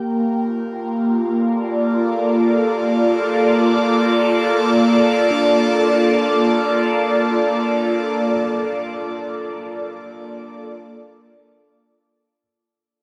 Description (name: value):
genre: ambient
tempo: free time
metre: none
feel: none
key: Bb major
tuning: A4 = 437 Hz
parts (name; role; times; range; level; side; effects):
- airy breathy pad; sustained chords; 0.0-12.4 s; Bb3 to G5; -18 LUFS; equal; chorus, phaser
- barky tine electric piano; arpeggios; 0.0-12.4 s; D4 to G4; -35 LUFS; equal; none
room: wet huge ambient reverb, RT60 7.7 s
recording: dreamy mix soaked in reverb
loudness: -18 LUFS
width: mono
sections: 0.0-12.4 A section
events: fade-out 8.2-12.4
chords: 0.0 Bbmaj7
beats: free time